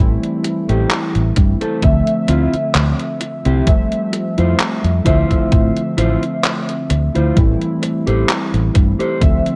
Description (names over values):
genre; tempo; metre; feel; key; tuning
vaporwave; 65 BPM; 4/4; swing 54% on 16ths; unclear; A4 = 439 Hz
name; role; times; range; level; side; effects
warbly lo-fi synth keys; accompaniment; 0.0-9.6 s; D3 to E5; -22 LUFS; equal; lush chorus, analog delay
fingered electric bass; bass; 0.0-9.4 s; A1 to A2; -18 LUFS; equal; none
detuned 8-bit digital drum machine; drums; 0.2-9.6 s; handclaps, hi-hat; -24 LUFS; equal; gated reverb
mellow electric guitar; riff; 0.4-9.2 s; A3 to C5; -25 LUFS; equal; lush chorus, analog delay
electronic kick drum; drums; 1.4-9.4 s; none; -17 LUFS; equal; none
room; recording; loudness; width
light reverb, digital ambience; cassette tape; -16 LUFS; mono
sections
0.0-9.6 A section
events
none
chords
0.0 Am7; 1.8 Dm9; 3.7 Fmaj7; 5.1 Dm9; 7.4 Am7